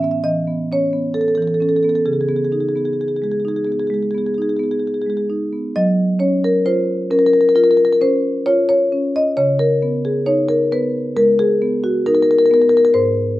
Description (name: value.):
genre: classical, contemporary piece for solo marimba.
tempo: 66 BPM.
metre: 4/4.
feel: straight.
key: unclear.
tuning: A4 = 440 Hz.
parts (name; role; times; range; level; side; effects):
marimba with soft mallets; solo; 0.0-13.4 s; Ab2 to E5; -14 LUFS; left 1 dB; none.
room: light reverb.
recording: none.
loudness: -14 LUFS.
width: side -16 dB against mid.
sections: 0.0-5.8 A section; 5.8-13.4 B section.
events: none.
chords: 0.0 Aadd9; 2.1 Dbsus2; 5.8 Gbmaj7; 9.4 Dbsus2.